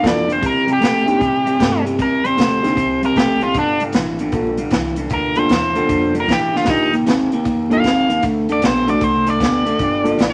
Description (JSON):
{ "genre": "electric blues shuffle", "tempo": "154 BPM", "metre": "4/4", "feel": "swing 65% on 8ths", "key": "G minor", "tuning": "A4 = 445 Hz", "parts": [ { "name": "overdriven electric guitar", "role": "melody", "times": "0.0-10.3 s", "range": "D4 to F5", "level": "-21 LUFS", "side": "equal", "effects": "none" }, { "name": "overdriven reed electric piano", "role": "accompaniment", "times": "0.0-10.2 s", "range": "Bb3 to A4", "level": "-22 LUFS", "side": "equal", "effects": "none" }, { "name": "electric guitar through a small old amp", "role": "riff", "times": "0.0-10.3 s", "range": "G2 to C4", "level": "-21 LUFS", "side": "equal", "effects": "none" }, { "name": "upright bass", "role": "bass", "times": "0.0-10.3 s", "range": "G1 to C3", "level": "-34 LUFS", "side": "equal", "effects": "none" }, { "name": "swinging big-band drum kit", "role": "drums", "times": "0.0-10.3 s", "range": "hi-hat, kick drum, snare drum", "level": "-24 LUFS", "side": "equal", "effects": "none" } ], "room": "moderate small room reverb, RT60 0.5 s", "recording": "vinyl crackle", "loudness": "-17 LUFS", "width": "mono", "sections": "0.0-10.3 A section", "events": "drum fill 6.5", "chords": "0.4 Cm7; 3.5 Gm7; 6.7 Ebmaj7; 8.2 D7(no3); 9.8 Gm7" }